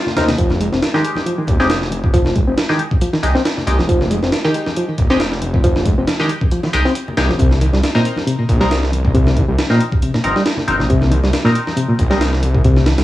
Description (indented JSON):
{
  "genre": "breakbeat, breaks",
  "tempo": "137 BPM",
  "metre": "4/4",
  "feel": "swing 54% on 16ths",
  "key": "F minor",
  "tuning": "A4 = 440 Hz",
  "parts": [
    { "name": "breakbeat sampler-style drum kit", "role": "drums", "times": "0.1-13.0 s", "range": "hi-hat, kick drum, snare drum", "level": "-18 LUFS", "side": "equal", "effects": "studio reverb, cassette tape" },
    { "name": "congas", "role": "percussion", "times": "0.1-12.8 s", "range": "none", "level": "-28 LUFS", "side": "left 3 dB", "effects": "none" },
    { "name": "band-passed chord stab", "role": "stabs", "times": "0.2-12.2 s", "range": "Ab3 to Bb4", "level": "-22 LUFS", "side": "left 2 dB", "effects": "phaser, cassette tape, tape echo" },
    { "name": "detuned saw bass", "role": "bass", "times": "0.2-13.0 s", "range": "Eb1 to Eb2", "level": "-18 LUFS", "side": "equal", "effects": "none" },
    { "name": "bright reed electric piano", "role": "riff", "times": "0.3-13.0 s", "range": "Bb2 to C4", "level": "-18 LUFS", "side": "equal", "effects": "fast tremolo, vintage 12-bit sampler grit, cassette tape, tape echo" }
  ],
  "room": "light reverb",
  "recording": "home recording on cassette",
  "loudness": "-13 LUFS",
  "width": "side -15 dB against mid",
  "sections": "0.0-13.0 A section",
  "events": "none",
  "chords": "0.4 Fm9; 7.4 Cm7",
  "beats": "| 0.38 0.82 1.26 1.70 | 2.14 2.57 3.01 3.45 | 3.89 4.33 4.76 5.20 | 5.64 6.08 6.52 6.95 | 7.39 7.83 8.27 8.71 | 9.14 9.58 10.02 10.46 | 10.89 11.33 11.77 12.21 | 12.65"
}